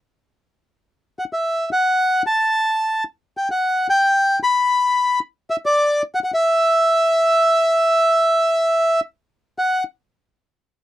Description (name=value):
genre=tango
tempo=111 BPM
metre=4/4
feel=rubato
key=unclear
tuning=A4 = 440 Hz
part: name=bandoneon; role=solo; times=1.2-9.8 s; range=D5 to B5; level=-15 LUFS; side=equal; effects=none
room=little or no reverb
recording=dry, close 1970s-style studio recording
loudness=-16 LUFS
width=side -14 dB against mid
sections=0.0-9.6 A section; 9.6-10.8 B section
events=none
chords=none